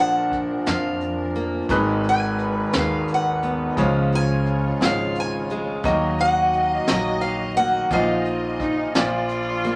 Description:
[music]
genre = acoustic folk-pop ballad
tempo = 58 BPM (dotted quarters)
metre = 6/8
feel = straight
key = unclear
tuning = A4 = 440 Hz
[part]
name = picked acoustic archtop guitar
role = melody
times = 0.0-9.3 s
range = Eb5 to Ab5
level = -26 LUFS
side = equal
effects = none
[part]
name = warm concert grand piano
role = accompaniment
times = 0.0-9.8 s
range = Ab1 to Eb5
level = -27 LUFS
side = equal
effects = none
[part]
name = warm studio string section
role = sustained chords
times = 0.0-9.8 s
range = F3 to Eb5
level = -36 LUFS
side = equal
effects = none
[part]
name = picked steel-string acoustic guitar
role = arpeggios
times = 0.0-9.8 s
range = Eb3 to Eb4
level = -29 LUFS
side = equal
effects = none
[part]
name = upright bass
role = bass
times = 0.0-9.8 s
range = Ab1 to F2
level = -32 LUFS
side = equal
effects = none
[part]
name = vintage brush drum kit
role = drums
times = 0.3-9.8 s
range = hi-hat, kick drum, snare drum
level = -28 LUFS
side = equal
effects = none
[part]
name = dark cello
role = second line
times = 8.6-9.8 s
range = Eb4 to F4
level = -28 LUFS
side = equal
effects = none
[sound]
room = wet studio reverb, RT60 0.8 s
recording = none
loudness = -22 LUFS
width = mono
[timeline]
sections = 0.0-9.8 A section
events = none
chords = 0.0 Bb; 1.7 Abm; 3.8 Db; 5.8 Ebm; 7.9 Bbsus4; 9.0 Bb

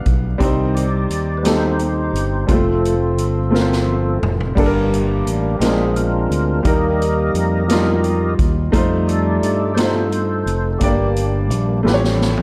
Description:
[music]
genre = slow gospel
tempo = 58 BPM (dotted quarters)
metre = 6/8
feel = straight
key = unclear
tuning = A4 = 440 Hz
[part]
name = warm upright piano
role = accompaniment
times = 0.0-12.4 s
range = G2 to F5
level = -23 LUFS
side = equal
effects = none
[part]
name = fingered electric bass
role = bass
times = 0.1-12.4 s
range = F1 to G2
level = -22 LUFS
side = equal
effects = none
[part]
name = swinging big-band drum kit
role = drums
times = 0.1-12.4 s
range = crash cymbal, hi-hat, kick drum, snare drum, toms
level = -24 LUFS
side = equal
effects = none
[part]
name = tonewheel organ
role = sustained chords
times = 0.4-12.3 s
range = Eb3 to Eb5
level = -24 LUFS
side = equal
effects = slow rotary speaker, overdrive, chorus vibrato
[sound]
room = moderate large studio reverb, RT60 0.9 s, studio reverb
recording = none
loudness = -17 LUFS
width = mono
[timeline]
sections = 0.0-12.4 A section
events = tonewheel organ solo 0.0-12.4; drum fill 3.5-4.6, 11.9-12.4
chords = 0.4 Cm; 2.5 F; 4.6 Gm; 5.6 Bb9; 6.7 Eb; 8.7 F7; 10.8 Gm; 11.9 A7b13

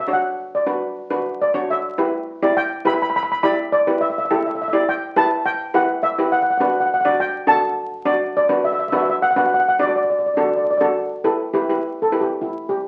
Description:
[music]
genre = calypso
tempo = 104 BPM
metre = 4/4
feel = straight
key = E minor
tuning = A4 = 440 Hz
[part]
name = steel pan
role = melody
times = 0.0-12.9 s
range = E4 to B5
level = -21 LUFS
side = equal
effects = none
[part]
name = steel pan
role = accompaniment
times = 0.1-12.7 s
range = D4 to D5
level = -23 LUFS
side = equal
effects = none
[sound]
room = wet studio reverb, RT60 0.8 s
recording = very old 78 rpm record, vinyl crackle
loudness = -19 LUFS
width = mono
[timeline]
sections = 0.0-2.0 A section; 2.0-11.2 B section; 11.2-12.9 C section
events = steel pan solo 11.2-12.9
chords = 0.0 Bm; 2.0 Em; 6.6 Bm; 11.2 Em

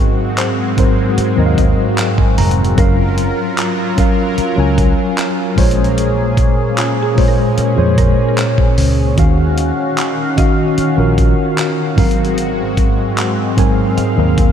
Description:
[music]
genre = contemporary R&B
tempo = 75 BPM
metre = 4/4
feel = straight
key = unclear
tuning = A4 = 439 Hz
[part]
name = mellow tine electric piano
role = accompaniment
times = 0.0-14.5 s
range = Ab2 to Bb5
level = -15 LUFS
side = left 1 dB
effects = medium stereo tremolo
[part]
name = warm analog pad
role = sustained chords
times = 0.0-14.5 s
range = Eb3 to F5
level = -20 LUFS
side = equal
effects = chorus, sidechain pumping
[part]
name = vintage muted fingered electric bass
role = bass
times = 0.0-14.5 s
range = F1 to F2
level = -16 LUFS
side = equal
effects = none
[part]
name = dusty soul sampler-style drum kit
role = drums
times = 0.4-14.5 s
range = handclaps, hi-hat, kick drum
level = -17 LUFS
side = equal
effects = none
[part]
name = mallet-like synth pluck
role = texture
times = 0.4-14.5 s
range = F4 to F5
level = -30 LUFS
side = right 3 dB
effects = none
[sound]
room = moderate cathedral reverb, RT60 6.2 s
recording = dreamy mix soaked in reverb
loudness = -12 LUFS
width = side -8 dB against mid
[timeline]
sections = 0.0-14.5 A section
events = tine electric piano fill 1.2-2.8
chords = 0.0 Ab13; 2.8 Gbmaj7; 5.6 Bbm9; 9.2 Ebm9; 12.0 Ab13

